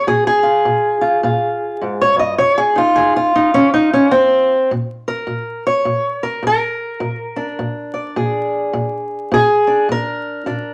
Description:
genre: acoustic country blues, solo or duo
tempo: 104 BPM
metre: 4/4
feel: swing 60% on 8ths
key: Bb mixolydian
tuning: A4 = 440 Hz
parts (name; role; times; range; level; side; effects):
- fingerpicked acoustic archtop guitar; solo; 0.0-10.7 s; F2 to Eb5; -16 LUFS; equal; none
room: wet studio reverb, RT60 0.6 s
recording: tape saturation, vinyl crackle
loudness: -16 LUFS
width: mono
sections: 0.0-4.7 A section; 4.7-10.7 B section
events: steel-string acoustic guitar solo 4.7-10.7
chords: 0.1 Bb5; 2.4 F5; 4.7 Bb7

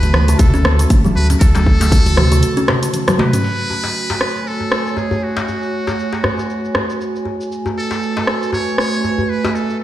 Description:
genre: afro house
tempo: 118 BPM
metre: 4/4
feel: swing 57% on 16ths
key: F# minor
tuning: A4 = 440 Hz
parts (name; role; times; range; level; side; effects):
- trumpet with metal mute; melody; 0.0-9.8 s; F#4 to C#5; -24 LUFS; equal; tape echo
- dark analog pad; sustained chords; 0.0-9.8 s; A3 to A5; -22 LUFS; right 2 dB; chorus, phaser, sidechain pumping
- kalimba; arpeggios; 0.0-3.4 s; C#3 to C#4; -21 LUFS; left 1 dB; sidechain pumping, tape echo
- warm sub bass; bass; 0.0-2.4 s; D2; -14 LUFS; equal; sidechain pumping
- house drum kit; drums; 0.0-9.8 s; cabasa, crash cymbal, hi-hat, rim click, toms; -20 LUFS; equal; overdrive, low-pass filter on hats, low-pass filter on perc, low-pass filter on snare, low-pass filter on toms, low-pass filter on cymbals, low-pass filter on room
- djembe; percussion; 0.0-9.5 s; none; -25 LUFS; left 2 dB; none
- congas; percussion; 0.1-3.3 s; none; -22 LUFS; right 3 dB; none
- electronic kick drum; drums; 0.4-2.0 s; none; -13 LUFS; equal; overdrive
room: light reverb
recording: played on a big sound system in a bare room, large studio reverb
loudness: -14 LUFS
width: side -13 dB against mid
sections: 0.0-3.4 A section; 3.4-9.8 B section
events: break 2.4-3.4; drum fill 2.9-3.4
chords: 0.0 D; 3.4 F#madd9

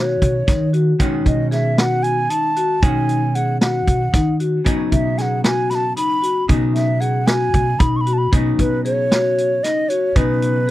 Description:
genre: progressive instrumental, band music in an uneven meter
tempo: 229 BPM (eighths)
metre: 7/8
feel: straight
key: B major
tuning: A4 = 440 Hz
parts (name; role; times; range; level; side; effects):
- mellow wooden flute; melody; 0.0-10.7 s; B4 to C#6; -20 LUFS; right 1 dB; none
- vintage hollow-body jazz guitar; accompaniment; 0.0-10.7 s; C#3 to F#4; -26 LUFS; right 1 dB; none
- vibraphone with medium hard mallets; arpeggios; 0.0-10.7 s; D#4 to G#4; -23 LUFS; left 5 dB; none
- upright bass; bass; 0.0-10.7 s; B2 to D#3; -20 LUFS; equal; none
- vintage drum kit; drums; 0.2-10.7 s; hi-hat, kick drum, snare drum; -19 LUFS; equal; none
room: little or no reverb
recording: dry, close 1970s-style studio recording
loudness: -15 LUFS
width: side -15 dB against mid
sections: 0.0-10.7 A section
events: none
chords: 0.0 Badd9

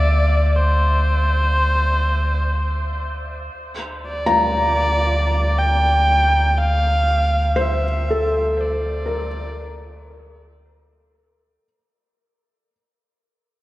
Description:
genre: ambient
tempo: free time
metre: none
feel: none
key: unclear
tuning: A4 = 440 Hz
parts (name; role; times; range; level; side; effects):
- dark electric violin; melody; 0.0-10.1 s; C5 to G5; -21 LUFS; equal; dub echo
- warm sub bass; bass; 0.0-11.6 s; D2; -20 LUFS; equal; none
- felt-muted upright piano; arpeggios; 4.3-12.7 s; A4 to Bb5; -22 LUFS; left 1 dB; dub echo
room: wet spring reverb, RT60 2.2 s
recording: echo-heavy mix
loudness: -16 LUFS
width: side -16 dB against mid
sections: 0.0-11.6 A section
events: fade-out 6.2-11.6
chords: 0.0 D7(no3); 3.5 Bbadd9/D

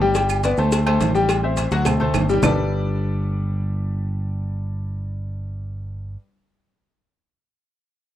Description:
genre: latin, salsa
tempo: 211 BPM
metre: 4/4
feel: straight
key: G major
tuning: A4 = 441 Hz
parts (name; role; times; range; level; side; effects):
- clear grand piano; accompaniment; 0.0-6.2 s; F#3 to G5; -22 LUFS; left 3 dB; none
- fingered electric bass; bass; 0.0-6.2 s; G1 to D2; -23 LUFS; right 1 dB; none
- congas; percussion; 0.0-2.5 s; none; -29 LUFS; equal; none
- cowbell and bongos; percussion; 0.1-2.5 s; none; -27 LUFS; left 4 dB; none
- maracas; percussion; 0.1-2.5 s; none; -36 LUFS; right 9 dB; none
- agogo bells and timbales; percussion; 0.2-2.5 s; none; -28 LUFS; right 11 dB; none
- claves; percussion; 0.3-2.5 s; none; -29 LUFS; right 10 dB; none
room: little or no reverb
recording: dry, close 1970s-style studio recording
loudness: -19 LUFS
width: side -12 dB against mid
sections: 0.0-2.4 A section; 2.4-4.7 B section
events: drum fill 1.9-2.4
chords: 0.2 Gadd9; 0.7 D5; 1.3 Am7; 1.9 D5; 2.4 Gadd9

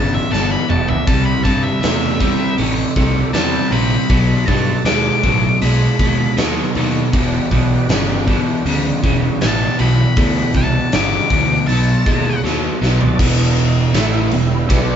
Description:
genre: blues rock power trio and southern rock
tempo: 79 BPM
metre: 4/4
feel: straight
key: E minor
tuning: A4 = 440 Hz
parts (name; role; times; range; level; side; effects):
- octave-fuzz lead guitar; melody; 0.0-12.4 s; E5 to D6; -21 LUFS; left 3 dB; distortion
- overdriven tonewheel organ; sustained chords; 0.0-15.0 s; G3 to A5; -29 LUFS; right 2 dB; none
- crunchy overdriven guitar; riff; 0.0-15.0 s; E2 to B3; -17 LUFS; equal; none
- fuzz picked electric bass; bass; 0.0-15.0 s; E1 to G2; -20 LUFS; equal; overdrive
- big rock drum kit; drums; 0.3-14.9 s; crash cymbal, hi-hat, kick drum, ride cymbal, snare drum, toms; -19 LUFS; equal; none
room: moderate studio reverb, RT60 0.5 s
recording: band playing live in one room, nothing above 7.6 kHz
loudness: -13 LUFS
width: side -8 dB against mid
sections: 0.0-13.2 A section; 13.2-15.0 B section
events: drum fill 0.3-1.1, 12.4-13.2; tonewheel organ solo 13.2-15.0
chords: 0.0 Em7; 1.1 Cmaj7; 4.1 B7#9; 7.1 Em7; 11.7 B7#9; 13.2 Em

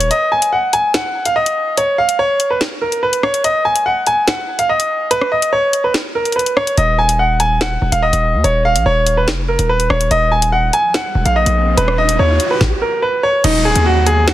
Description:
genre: hip hop, drill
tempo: 144 BPM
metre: 4/4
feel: half-time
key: Eb minor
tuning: A4 = 442 Hz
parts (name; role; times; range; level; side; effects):
- bright grand piano; melody; 0.0-14.3 s; Eb4 to Ab5; -14 LUFS; equal; none
- distorted 808-style bass; bass; 0.0-0.1, 6.8-14.3 s; Eb1 to Eb2; -16 LUFS; equal; distortion
- drill drum kit; drums; 0.0-14.3 s; crash cymbal, finger snaps, hi-hat, kick drum, rim click, snare drum; -19 LUFS; left 1 dB; overdrive, soft clipping on snare
- riser and downlifter; sound effects; 10.6-14.3 s; none; -23 LUFS; equal; none
room: light reverb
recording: dense, heavily limited modern master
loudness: -12 LUFS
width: side -14 dB against mid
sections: 0.0-13.4 A section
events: kick muted 0.1-6.8; riser 10.6-13.4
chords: 0.1 N.C.; 6.8 Ebmadd11; 8.4 Badd9(#11)/D# (rootless); 10.1 Eb5; 11.8 Badd9/D#

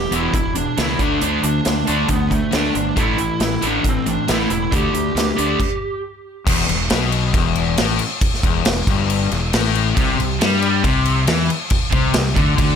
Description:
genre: hard rock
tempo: 137 BPM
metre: 4/4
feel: straight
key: E minor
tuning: A4 = 440 Hz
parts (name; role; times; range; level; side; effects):
- lead guitar through a small cranked amp; melody; 0.0-6.0 s; A3 to G4; -23 LUFS; right 2 dB; overdrive, tape echo
- crunchy overdriven guitar; riff; 0.0-5.6, 10.0-12.8 s; E2 to D4; -23 LUFS; right 9 dB; none
- overdriven semi-hollow guitar; riff; 0.0-12.8 s; E2 to D4; -21 LUFS; left 11 dB; none
- fuzz fingered electric bass; bass; 0.0-12.8 s; E1 to G2; -23 LUFS; equal; overdrive
- big rock drum kit; drums; 0.1-12.7 s; crash cymbal, hi-hat, kick drum, snare drum; -20 LUFS; equal; none
room: light reverb, small room ambience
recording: none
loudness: -16 LUFS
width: side -7 dB against mid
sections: 0.0-6.5 A section; 6.5-12.8 B section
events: stop 5.6-6.5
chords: 0.0 E5; 1.0 D5; 3.0 A5; 4.7 Dsus4; 6.5 Em; 10.0 C5

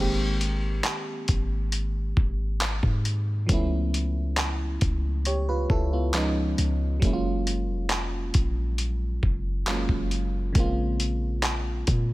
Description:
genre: contemporary R&B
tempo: 68 BPM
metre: 4/4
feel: straight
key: Ab major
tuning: A4 = 440 Hz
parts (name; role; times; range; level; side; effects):
- FM electric piano; accompaniment; 0.0-12.1 s; Db3 to Db5; -30 LUFS; right 1 dB; chorus
- warm 808-style bass; bass; 0.0-12.1 s; F1 to Bb2; -26 LUFS; equal; none
- dusty soul sampler-style drum kit; drums; 0.4-12.1 s; handclaps, hi-hat, kick drum; -27 LUFS; equal; overdrive
room: digital ambience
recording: none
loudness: -24 LUFS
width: side -18 dB against mid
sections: 0.0-12.1 A section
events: none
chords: 0.0 Abmaj7; 3.5 Db7alt; 6.1 Db9; 7.0 Gbmaj9; 10.6 Bbm9

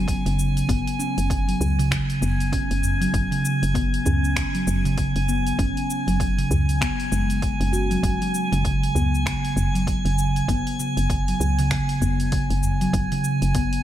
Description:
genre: organic downtempo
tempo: 98 BPM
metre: 4/4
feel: swing 59% on 16ths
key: unclear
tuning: A4 = 440 Hz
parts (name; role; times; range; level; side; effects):
- steel tongue drum; arpeggios; 0.0-13.8 s; C#3 to F#4; -24 LUFS; right 1 dB; digital delay
- woody FM bass; bass; 0.0-13.8 s; F#1 to C#2; -24 LUFS; equal; sidechain pumping
- drifting glass-harmonics texture; texture; 0.0-13.8 s; G#5; -29 LUFS; right 1 dB; chorus, built-in reverb
- deep house drum kit; drums; 0.1-13.8 s; finger snaps, hi-hat, shaker; -32 LUFS; left 1 dB; overdrive
- electronic kick drum; drums; 0.1-13.7 s; none; -28 LUFS; equal; overdrive
- udu; percussion; 1.6-12.8 s; none; -28 LUFS; left 1 dB; none
room: light reverb, digital ambience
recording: none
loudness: -20 LUFS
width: side -12 dB against mid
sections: 0.0-13.8 A section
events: none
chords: 0.0 F#sus24

